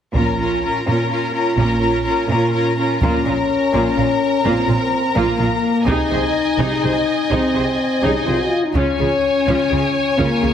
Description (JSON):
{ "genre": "cinematic, epic orchestral film score", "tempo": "84 BPM (dotted quarters)", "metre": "6/8", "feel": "straight", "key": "Bb minor", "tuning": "A4 = 438 Hz", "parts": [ { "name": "solo taiko drums", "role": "drums", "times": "0.1-9.7 s", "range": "none", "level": "-24 LUFS", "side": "equal", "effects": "none" }, { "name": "rich studio violin section", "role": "second line", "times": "0.2-10.5 s", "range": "Bb4 to Bb5", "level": "-22 LUFS", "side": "left 3 dB", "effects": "none" }, { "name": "rich symphonic viola section", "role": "accompaniment", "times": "0.2-10.5 s", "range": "Bb3 to C5", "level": "-22 LUFS", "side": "right 1 dB", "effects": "none" }, { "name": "rich symphonic cello section", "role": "bass", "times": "0.2-10.5 s", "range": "Bb2 to Db3", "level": "-23 LUFS", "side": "right 2 dB", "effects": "none" }, { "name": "rich symphonic double bass section", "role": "bass", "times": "0.2-10.5 s", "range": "Bb1 to Db2", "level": "-25 LUFS", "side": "right 3 dB", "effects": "none" }, { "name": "mellow French horn section", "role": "sustained chords", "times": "3.0-10.5 s", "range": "Bb3 to Gb4", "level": "-19 LUFS", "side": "left 3 dB", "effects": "none" } ], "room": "moderate scoring stage reverb, RT60 1.9 s", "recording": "heavily compressed radio sound, multiband compression", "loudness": "-15 LUFS", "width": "side -9 dB against mid", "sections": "0.1-3.0 A section; 3.0-10.5 B section", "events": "none", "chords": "0.1 Bbm; 5.9 Ab/C; 8.8 Db" }